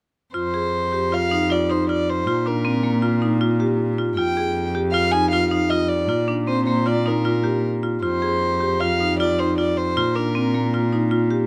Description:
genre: contemporary instrumental, chamber music in an uneven meter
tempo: 156 BPM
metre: 5/4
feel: straight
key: F dorian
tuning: A4 = 440 Hz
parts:
  - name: warm violin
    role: melody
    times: 0.3-10.9 s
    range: Bb4 to Ab5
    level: -26 LUFS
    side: equal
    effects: none
  - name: marimba with hard mallets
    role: arpeggios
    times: 0.3-11.5 s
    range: Bb3 to Ab4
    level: -24 LUFS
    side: equal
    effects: none
  - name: rich cello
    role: bass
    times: 0.3-11.5 s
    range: F2 to Bb2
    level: -27 LUFS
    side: equal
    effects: none
room: little or no reverb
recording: close, detailed microphones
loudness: -21 LUFS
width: mono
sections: 0.3-11.5 A section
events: none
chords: 0.3 Fm; 2.3 Bb5; 4.2 Fm; 6.1 Bbadd9; 8.0 Fm; 10.0 Bb5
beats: | 0.35 0.73 1.12 1.50 1.89 | 2.27 2.65 3.03 3.41 3.79 | 4.17 4.55 4.94 5.32 5.71 | 6.09 6.47 6.86 7.25 7.64 | 8.03 8.42 8.81 9.20 9.58 | 9.97 10.35 10.74 11.12

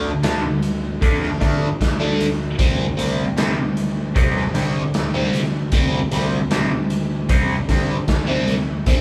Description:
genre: psychedelic rock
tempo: 76 BPM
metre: 4/4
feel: straight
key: unclear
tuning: A4 = 440 Hz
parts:
  - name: fuzz guitar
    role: riff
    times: 0.0-9.0 s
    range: C3 to D4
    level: -24 LUFS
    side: equal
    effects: distortion, phaser
  - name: fuzz picked electric bass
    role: bass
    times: 0.0-9.0 s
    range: D2 to D3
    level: -27 LUFS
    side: equal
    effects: overdrive
  - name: raw garage drum kit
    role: drums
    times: 0.2-9.0 s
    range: hi-hat, kick drum, snare drum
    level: -23 LUFS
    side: equal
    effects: none
room: moderate large studio reverb, RT60 0.9 s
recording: band playing live in one room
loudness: -20 LUFS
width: mono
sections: 0.0-9.0 A section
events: none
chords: 0.0 D5; 2.6 Csus2/D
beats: 0.23 1.02 1.81 | 2.59 3.38 4.16 4.95 | 5.73 6.52 7.30 8.09 | 8.87

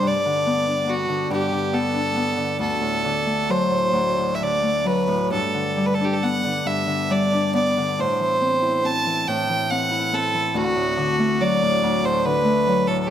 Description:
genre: celtic folk, Celtic slow air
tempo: 66-73 BPM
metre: 3/4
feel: rubato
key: G major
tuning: A4 = 440 Hz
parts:
  - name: clear fiddle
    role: melody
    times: 0.0-13.1 s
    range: F#4 to A5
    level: -21 LUFS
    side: right 1 dB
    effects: none
  - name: Celtic harp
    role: accompaniment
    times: 0.0-13.1 s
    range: D2 to E4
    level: -22 LUFS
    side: left 1 dB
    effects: none
room: moderate recital hall reverb, RT60 1.6 s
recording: none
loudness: -19 LUFS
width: side -10 dB against mid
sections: 0.0-13.1 A section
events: none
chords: 0.0 Gadd9; 2.6 D; 5.3 G; 8.0 Am; 10.5 D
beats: | 0.04 0.89 1.73 | 2.60 3.50 4.40 | 5.31 6.21 7.09 | 7.97 8.84 9.70 | 10.55 11.41 12.25 | 13.10

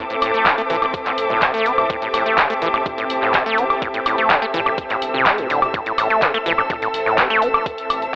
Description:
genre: acid house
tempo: 125 BPM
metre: 4/4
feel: straight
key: A minor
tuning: A4 = 444 Hz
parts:
  - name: lush unison pad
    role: sustained chords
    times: 0.0-8.2 s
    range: E3 to A4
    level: -26 LUFS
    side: equal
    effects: chorus, sidechain pumping
  - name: acid bass, saw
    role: riff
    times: 0.0-7.5 s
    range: A2 to C4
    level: -20 LUFS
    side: equal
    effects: tube saturation, tape echo
  - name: warm studio string section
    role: texture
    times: 0.0-8.2 s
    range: C4 to E6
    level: -22 LUFS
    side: equal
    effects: sidechain pumping
  - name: punchy analog drum machine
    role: drums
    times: 0.1-8.1 s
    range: cabasa, handclaps, hi-hat, toms, woodblock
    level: -19 LUFS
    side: equal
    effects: none
  - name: round analog bass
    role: bass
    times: 0.2-8.1 s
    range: G1 to A2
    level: -36 LUFS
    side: equal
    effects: sidechain pumping
  - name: electronic kick drum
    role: drums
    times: 0.5-7.8 s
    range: none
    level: -25 LUFS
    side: equal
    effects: none
room: light reverb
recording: dry, gritty hardware recording, cassette tape, telephone sound, faint mains hum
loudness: -15 LUFS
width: side -24 dB against mid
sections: 0.0-8.2 A section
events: none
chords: 0.0 Am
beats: 0.46 0.94 1.42 | 1.90 2.38 2.86 3.34 | 3.82 4.30 4.78 5.26 | 5.74 6.22 6.70 7.18 | 7.66 8.14

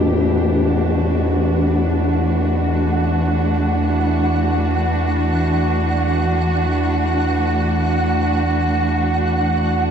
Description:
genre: dark ambient drone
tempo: free time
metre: none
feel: none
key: unclear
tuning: A4 = 440 Hz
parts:
  - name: dark studio cello section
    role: sustained chords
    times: 0.0-9.9 s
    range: E3 to G4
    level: -20 LUFS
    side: right 2 dB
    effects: none
  - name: deep rumbling drone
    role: drone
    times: 0.0-9.9 s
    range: E2 to E3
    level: -20 LUFS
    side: left 1 dB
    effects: built-in reverb
  - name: flickering grainy texture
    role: texture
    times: 0.1-9.9 s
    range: F#5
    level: -25 LUFS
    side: right 2 dB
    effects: built-in reverb
room: wet huge ambient reverb, RT60 8.4 s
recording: dark, warm production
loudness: -16 LUFS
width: side -7 dB against mid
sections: 0.0-9.9 A section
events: filter sweep on synth drone 0.0-9.9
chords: 0.0 Esus2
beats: free time

